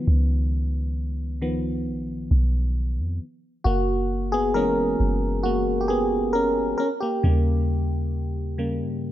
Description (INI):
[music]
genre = R&B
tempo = 67 BPM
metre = 4/4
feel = straight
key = unclear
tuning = A4 = 440 Hz
[part]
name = FM electric piano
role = accompaniment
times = 0.0-9.1 s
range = C#3 to A#4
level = -24 LUFS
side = equal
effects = chorus
[part]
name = soft 808-style bass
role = bass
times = 0.1-9.1 s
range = F#1 to G2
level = -24 LUFS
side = equal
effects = none
[sound]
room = light reverb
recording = none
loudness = -21 LUFS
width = side -13 dB against mid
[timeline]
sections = 0.0-9.1 A section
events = FM electric piano solo 0.0-9.1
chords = 0.0 C#9; 3.2 F#9; 6.8 D#7